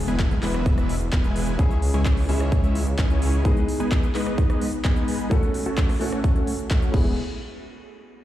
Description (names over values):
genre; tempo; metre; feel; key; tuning
EDM, festival progressive house; 129 BPM; 4/4; straight; E major; A4 = 440 Hz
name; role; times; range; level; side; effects
warm concert grand piano; accompaniment; 0.0-7.2 s; G#3 to B4; -30 LUFS; left 2 dB; sidechain pumping, ping-pong delay
detuned saw bass; bass; 0.0-3.4, 6.9-7.2 s; E1 to C#2; -24 LUFS; equal; sidechain pumping
impact; sound effects; 0.0-1.6 s; none; -34 LUFS; equal; none
dense compressed supersaw; riff; 0.1-7.1 s; G#3 to A5; -28 LUFS; equal; sidechain pumping, low-pass filter, ping-pong delay
big-room dance drum kit; drums; 0.1-7.0 s; crash cymbal, handclaps, hi-hat, rim click; -34 LUFS; equal; none
electronic kick drum; drums; 0.2-7.0 s; none; -21 LUFS; equal; none
room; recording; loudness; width
little or no reverb; played on a big sound system in a bare room, large studio reverb; -20 LUFS; side -13 dB against mid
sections
0.0-7.2 A section; 7.2-8.2 B section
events
impact 0.0-1.6; filter sweep on supersaw synth 0.0-7.2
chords
0.0 E; 1.6 C#m; 3.5 G#m; 5.3 F#m; 6.9 E; 7.2 N.C.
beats
0.20 0.66 1.12 | 1.59 2.06 2.52 2.98 | 3.45 3.92 4.38 4.85 | 5.31 5.78 6.24 6.71 | 7.17